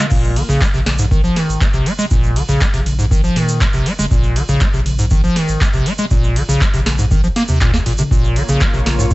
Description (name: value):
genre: acid house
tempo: 120 BPM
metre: 4/4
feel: straight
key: Bb minor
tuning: A4 = 440 Hz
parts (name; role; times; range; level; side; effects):
- lush unison pad; sustained chords; 0.0-0.1, 8.1-9.1 s; Bb3 to Db5; -26 LUFS; left 1 dB; chorus, phaser, sidechain pumping
- acid bass, square; riff; 0.0-9.1 s; Ab2 to Bb3; -17 LUFS; equal; wide subtle chorus, tape echo
- warm sub bass; bass; 0.1-9.1 s; F1 to Bb2; -20 LUFS; equal; tube saturation, sidechain pumping
- booming analog drum machine; drums; 0.1-9.0 s; crash cymbal, handclaps, hi-hat, ride cymbal, snare drum, toms; -22 LUFS; equal; none
- electronic kick drum; drums; 0.1-9.1 s; none; -16 LUFS; equal; none
- egg shaker; percussion; 0.1-9.1 s; none; -29 LUFS; right 2 dB; none
room: little or no reverb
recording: dry, gritty hardware recording, cassette tape, nothing above 8.0 kHz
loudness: -13 LUFS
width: side -20 dB against mid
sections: 0.1-9.1 A section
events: drop 0.1-9.1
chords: 0.1 Bbm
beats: | 0.11 0.61 1.11 1.61 | 2.11 2.61 3.11 3.61 | 4.11 4.61 5.11 5.61 | 6.11 6.61 7.11 7.61 | 8.11 8.61 9.11